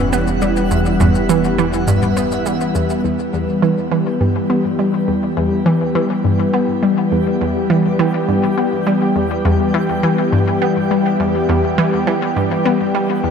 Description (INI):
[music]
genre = ambient, sequencer-driven space music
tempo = 103 BPM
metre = 4/4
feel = straight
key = E dorian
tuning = A4 = 440 Hz
[part]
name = lush unison pad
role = sustained chords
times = 0.0-13.3 s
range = E3 to G4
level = -17 LUFS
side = left 1 dB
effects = chorus, shimmer reverb
[part]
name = analog pluck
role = riff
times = 0.0-13.3 s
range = E2 to B3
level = -17 LUFS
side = equal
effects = chorus, ping-pong delay, shimmer reverb
[part]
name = fat analog bass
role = bass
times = 0.0-3.0 s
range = E1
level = -25 LUFS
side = equal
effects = none
[part]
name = twinkling granular texture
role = texture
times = 0.0-13.3 s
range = G3 to G5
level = -27 LUFS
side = right 2 dB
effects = built-in reverb, shimmer reverb
[part]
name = electronic shaker and toms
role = percussion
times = 0.1-3.0 s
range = none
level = -26 LUFS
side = equal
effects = ping-pong delay
[sound]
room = wet spring reverb, RT60 2.5 s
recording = echo-heavy mix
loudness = -14 LUFS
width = side -6 dB against mid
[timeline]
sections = 0.0-3.0 A section; 3.0-13.3 B section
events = fade-in on synth texture 3.0-13.3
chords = 0.0 Em; 3.0 Emadd9